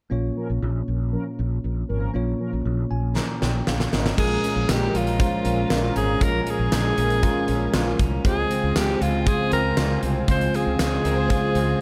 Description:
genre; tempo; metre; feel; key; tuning
1980s-style pop; 118 BPM; 4/4; straight; Bb minor; A4 = 443 Hz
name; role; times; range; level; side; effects
bell-like tine electric piano; accompaniment; 0.1-11.8 s; Bb2 to Bb5; -29 LUFS; equal; none
mellow fretless electric bass; bass; 0.1-11.7 s; Ab1 to Db2; -28 LUFS; equal; ensemble chorus
mellow synth brass; stabs; 0.4-11.8 s; F3 to C5; -36 LUFS; equal; none
huge arena drum kit; drums; 3.2-11.7 s; crash cymbal, hi-hat, kick drum, snare drum, tambourine; -28 LUFS; equal; gated reverb
bright alto saxophone; melody; 4.2-11.8 s; F4 to C5; -28 LUFS; equal; none
warm analog pad; sustained chords; 4.2-11.8 s; C4 to Bb5; -36 LUFS; equal; subtle chorus
direct-recorded clean electric guitar; riff; 4.2-11.8 s; Ab3 to F4; -36 LUFS; equal; analog chorus
warm studio violin section; second line; 11.0-11.8 s; F4 to C5; -36 LUFS; equal; none
room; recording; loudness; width
light reverb, studio reverb; none; -23 LUFS; mono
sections
0.1-4.2 A section; 4.2-11.8 B section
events
tine electric piano fill 2.7-4.2; drum fill 3.2-4.2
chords
0.1 Bbm; 4.2 Bbm7; 8.2 Dbmaj7

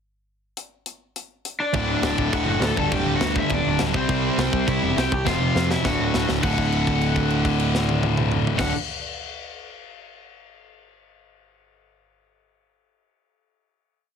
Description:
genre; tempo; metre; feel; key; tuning
punk rock; 205 BPM; 4/4; straight; D mixolydian; A4 = 439 Hz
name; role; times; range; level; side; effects
tight metal drum kit; drums; 0.6-8.7 s; crash cymbal, hi-hat, kick drum, snare drum, toms; -28 LUFS; equal; none
cranked stack guitar; melody; 1.6-8.7 s; C4 to A5; -27 LUFS; left 2 dB; overdrive
sludgy distorted guitar; riff; 1.7-8.7 s; D2 to C4; -25 LUFS; right 9 dB; overdrive
tight distorted guitar; riff; 1.7-8.7 s; D2 to C4; -25 LUFS; left 13 dB; distortion
overdriven picked electric bass; bass; 1.7-8.7 s; D1 to F2; -27 LUFS; equal; none
room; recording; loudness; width
light reverb; heavily compressed radio sound; -20 LUFS; side -7 dB against mid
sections
0.5-1.7 pickup bar; 1.7-6.4 chorus; 6.4-8.8 final chord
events
drum fill 5.3-6.4; held note 6.4-8.6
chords
0.5 N.C.; 1.7 D; 2.8 G5/D; 3.9 C; 5.3 F5; 5.8 D

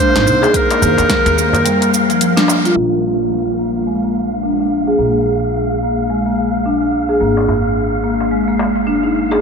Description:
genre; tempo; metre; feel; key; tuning
organic downtempo; 108 BPM; 4/4; swing 60% on 16ths; Bb mixolydian; A4 = 440 Hz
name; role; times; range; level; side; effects
clear clarinet; melody; 0.0-2.5 s; Bb4 to C5; -17 LUFS; right 1 dB; tape echo
marimba with medium mallets; arpeggios; 0.0-9.4 s; F3 to Ab4; -15 LUFS; equal; low-pass filter, diffuse ambient delay
deep house drum kit; drums; 0.0-2.7 s; hi-hat, shaker, snare drum; -22 LUFS; equal; overdrive, low-pass filter on perc, low-pass filter on hats, low-pass filter on snare, low-pass filter on room
wind-like tuned noise texture; texture; 0.0-9.4 s; F5; -24 LUFS; right 1 dB; built-in reverb
upright bass; bass; 0.2-9.4 s; Ab1 to Eb2; -22 LUFS; equal; tube saturation
darbuka; percussion; 0.3-2.6, 7.4-9.4 s; none; -25 LUFS; left 2 dB; none
electronic kick drum; drums; 0.5-1.2 s; none; -20 LUFS; equal; overdrive
room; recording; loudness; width
wet huge ambient reverb, RT60 7.9 s; dreamy mix soaked in reverb, low-pass filter; -13 LUFS; side -5 dB against mid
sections
0.0-2.8 A section; 2.8-9.4 B section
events
band accent 2.4; filter sweep on marimba 2.8-9.4; filter sweep 2.8-9.4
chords
0.0 Ab; 0.5 Eb5; 2.8 Bb5; 7.2 Ab5

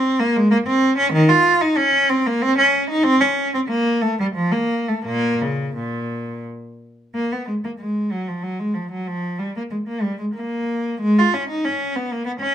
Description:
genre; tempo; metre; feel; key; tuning
classical, baroque-style suite movement for unaccompanied cello; 84-100 BPM; 3/4; rubato; Bb minor; A4 = 443 Hz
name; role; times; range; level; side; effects
rich cello; solo; 0.0-12.5 s; Bb2 to F4; -18 LUFS; equal; none
room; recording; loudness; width
moderate stone room reverb, RT60 0.9 s; minimal, uncompressed stereo recording; -17 LUFS; side -10 dB against mid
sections
0.0-7.2 A section; 7.2-12.5 A section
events
none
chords
none

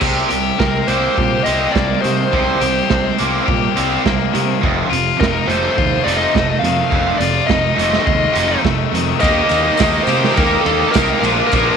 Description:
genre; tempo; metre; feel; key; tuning
indie rock; 104 BPM; 4/4; straight; unclear; A4 = 441 Hz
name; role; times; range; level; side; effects
overdriven electric guitar; riff; 0.0-11.8 s; F2 to G4; -19 LUFS; left 17 dB; none
overdriven electric guitar; riff; 0.0-11.8 s; F2 to Eb4; -20 LUFS; right 11 dB; analog chorus
fuzz picked electric bass; bass; 0.0-11.7 s; F1 to C3; -23 LUFS; equal; overdrive
raw garage drum kit; drums; 0.0-11.7 s; crash cymbal, hi-hat, kick drum, ride cymbal, snare drum; -20 LUFS; right 4 dB; none
bluesy overdriven lead guitar; melody; 0.6-11.8 s; A4 to F5; -19 LUFS; left 1 dB; distortion, tape echo
phased string machine; sustained chords; 9.2-11.8 s; Bb4 to Eb6; -29 LUFS; left 1 dB; none
tambourine; percussion; 9.2-11.7 s; none; -33 LUFS; left 16 dB; none
room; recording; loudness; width
small room ambience; 1960s-style stereo with parts hard left and right; -13 LUFS; side -6 dB against mid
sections
0.0-9.2 A section; 9.2-11.8 B section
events
none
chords
0.0 Cm7; 4.6 F7; 9.2 Eb; 11.2 Bb

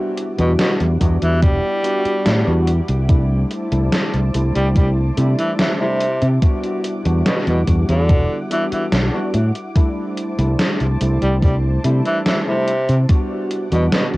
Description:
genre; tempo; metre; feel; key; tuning
vaporwave; 72 BPM; 4/4; straight; C lydian; A4 = 441 Hz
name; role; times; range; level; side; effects
bright tine electric piano; accompaniment; 0.0-14.2 s; G3 to F#4; -24 LUFS; equal; ensemble chorus, cassette tape, analog delay
soft string machine; sustained chords; 0.0-14.2 s; G3 to D6; -30 LUFS; equal; ensemble chorus, cassette tape
gated 80s digital drum machine; drums; 0.2-14.2 s; hi-hat, snare drum; -21 LUFS; equal; gated reverb, gated reverb snare, overdrive, cassette tape
clear tenor saxophone; melody; 0.4-14.1 s; B2 to G3; -22 LUFS; equal; cassette tape, tape echo
fingered electric bass; bass; 0.4-14.2 s; E1 to C3; -17 LUFS; equal; none
electronic kick drum; drums; 1.0-13.3 s; none; -15 LUFS; equal; overdrive, cassette tape
room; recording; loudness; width
light reverb; home recording on cassette; -15 LUFS; side -20 dB against mid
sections
0.0-14.2 A section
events
none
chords
0.0 Em9; 3.1 C69; 6.4 Em9; 9.8 C69; 13.1 Em9

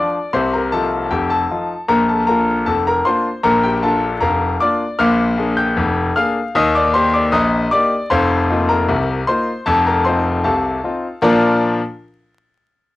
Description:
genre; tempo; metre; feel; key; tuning
ragtime piano; 77 BPM; 2/4; straight; Bb major; A4 = 440 Hz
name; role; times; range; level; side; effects
clear concert grand piano; solo; 0.0-11.8 s; F1 to G6; -14 LUFS; left 2 dB; cassette tape
room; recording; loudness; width
moderate studio ambience, RT60 0.5 s; home recording on cassette, vinyl crackle; -14 LUFS; side -17 dB against mid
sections
0.0-11.2 A section; 11.2-12.8 B section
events
none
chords
0.3 F7/C; 1.9 Bb; 5.0 Bb7; 6.5 Eb; 8.1 F7sus4; 9.7 F7; 11.2 Bb

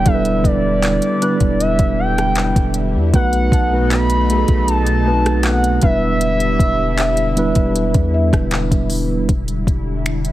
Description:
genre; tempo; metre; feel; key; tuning
contemporary R&B; 78 BPM; 4/4; straight; E minor; A4 = 435 Hz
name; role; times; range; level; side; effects
gliding portamento lead; melody; 0.0-8.5 s; D5 to B5; -20 LUFS; equal; chorus, digital delay
mellow tine electric piano; accompaniment; 0.0-9.3 s; G3 to D5; -19 LUFS; right 2 dB; slow stereo tremolo
lush unison pad; sustained chords; 0.0-10.3 s; B2 to E4; -25 LUFS; equal; chorus, phaser
long sustained 808-style bass; bass; 0.0-10.3 s; E1 to E2; -20 LUFS; equal; none
felt-muted upright piano; texture; 0.0-9.6 s; E5 to F#6; -31 LUFS; left 2 dB; digital delay
smooth R&B drum kit; drums; 0.1-10.3 s; finger snaps, handclaps, hi-hat, kick drum, rim click; -18 LUFS; equal; none
room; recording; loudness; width
little or no reverb; heavily compressed radio sound; -14 LUFS; side -14 dB against mid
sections
0.0-9.3 A section; 9.3-10.3 B section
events
none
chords
0.0 Em7; 3.1 B7; 5.8 Em7

